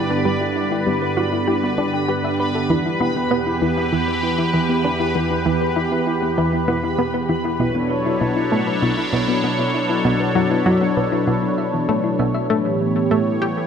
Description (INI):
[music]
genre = ambient, sequencer-driven space music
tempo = 98 BPM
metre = 4/4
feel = straight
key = E dorian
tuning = A4 = 441 Hz
[part]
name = sweeping resonant pad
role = sustained chords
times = 0.0-13.7 s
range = E2 to D5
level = -20 LUFS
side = right 1 dB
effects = chorus
[part]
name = thumb-piano-like synth pluck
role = arpeggios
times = 0.0-12.4 s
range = E3 to E5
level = -25 LUFS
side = left 2 dB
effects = chorus, auto-pan, cassette tape, tape echo
[part]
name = analog pluck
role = riff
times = 0.0-13.5 s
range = B2 to G4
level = -23 LUFS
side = equal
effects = chorus, tape echo
[part]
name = bubbling stepped-filter texture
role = texture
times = 0.0-12.5 s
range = B4 to B5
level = -28 LUFS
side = left 1 dB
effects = chorus, built-in reverb
[sound]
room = wet plate reverb, RT60 2.5 s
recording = none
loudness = -17 LUFS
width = side -7 dB against mid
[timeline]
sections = 0.0-12.5 A section; 12.5-13.7 B section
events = none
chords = 0.0 G; 2.7 Em; 7.6 Bm7; 12.5 A7